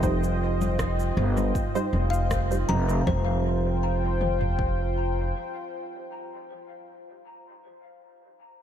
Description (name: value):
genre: ambient dub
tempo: 79 BPM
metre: 4/4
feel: swing 54% on 16ths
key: F minor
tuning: A4 = 439 Hz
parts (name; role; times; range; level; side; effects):
- warm analog pad; sustained chords; 0.0-6.9 s; F4 to G5; -32 LUFS; equal; chorus
- kalimba; arpeggios; 0.0-7.6 s; G3 to Bb5; -36 LUFS; left 4 dB; dub echo
- filtered dub chord stab; stabs; 0.0-7.6 s; F3 to C5; -34 LUFS; right 2 dB; none
- upright bass; bass; 0.0-5.3 s; F1 to G1; -25 LUFS; equal; none
- deep house drum kit; drums; 0.0-4.8 s; kick drum, toms; -30 LUFS; equal; overdrive, small room ambience
- electronic cabasa, congas and rim click; drums; 0.0-3.0 s; none; -36 LUFS; left 4 dB; small room ambience, dub echo
- wind-like tuned noise texture; texture; 0.0-3.1 s; G3 to G5; -40 LUFS; equal; built-in reverb, wide subtle chorus
room: light reverb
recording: none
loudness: -23 LUFS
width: side -9 dB against mid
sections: 0.0-3.1 A section; 3.1-6.1 B section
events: none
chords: 0.0 Cm/F; 3.1 Fmadd9